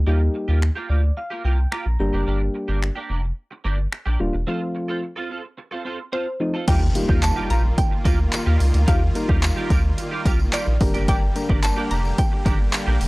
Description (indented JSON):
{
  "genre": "dance-pop",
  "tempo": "109 BPM",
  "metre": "4/4",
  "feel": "straight",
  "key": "unclear",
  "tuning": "A4 = 438 Hz",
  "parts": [
    { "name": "round analog bass", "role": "bass", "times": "0.0-13.1 s", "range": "Eb1 to Eb2", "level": "-20 LUFS", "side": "equal", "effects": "sidechain pumping" },
    { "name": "soft electric-piano-like synth keys", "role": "accompaniment", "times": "0.1-11.9 s", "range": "F3 to Bb5", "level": "-26 LUFS", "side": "left 1 dB", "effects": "chorus, sidechain pumping" },
    { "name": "twelve-string electric guitar", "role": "riff", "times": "0.1-13.1 s", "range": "Bb3 to A4", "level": "-30 LUFS", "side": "right 3 dB", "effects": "ensemble chorus" },
    { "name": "house drum kit", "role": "drums", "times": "0.6-13.1 s", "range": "crash cymbal, finger snaps, handclaps, hi-hat, kick drum", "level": "-21 LUFS", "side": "equal", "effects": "none" },
    { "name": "mallet-like synth pluck", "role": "melody", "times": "6.1-13.1 s", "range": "C5 to Bb5", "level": "-29 LUFS", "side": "equal", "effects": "chorus, analog delay" },
    { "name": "supersaw chords", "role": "sustained chords", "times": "6.7-13.1 s", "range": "D3 to G4", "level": "-30 LUFS", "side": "equal", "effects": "sidechain pumping" },
    { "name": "tambourine", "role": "percussion", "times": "6.7-13.1 s", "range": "none", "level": "-39 LUFS", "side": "left 1 dB", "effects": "none" },
    { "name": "impact", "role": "sound effects", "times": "6.7-8.9 s", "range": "none", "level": "-31 LUFS", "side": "equal", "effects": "none" }
  ],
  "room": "little or no reverb",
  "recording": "dry, gritty hardware recording, transformer saturation",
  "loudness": "-19 LUFS",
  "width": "side -23 dB against mid",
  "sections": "0.0-6.7 A section; 6.7-13.1 B section",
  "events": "synth keys fill 0.6-2.3; break 4.5-6.7; impact 6.7-8.9",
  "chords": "0.0 Ebadd9; 2.0 Gm; 4.5 F; 6.7 Ebadd9; 10.8 Gm",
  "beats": "| 0.07 0.62 1.17 1.72 | 2.27 2.82 3.38 3.92 | 4.48 5.03 5.58 6.13 | 6.68 7.23 7.78 8.33 | 8.88 9.43 9.98 10.53 | 11.08 11.63 12.18 12.73"
}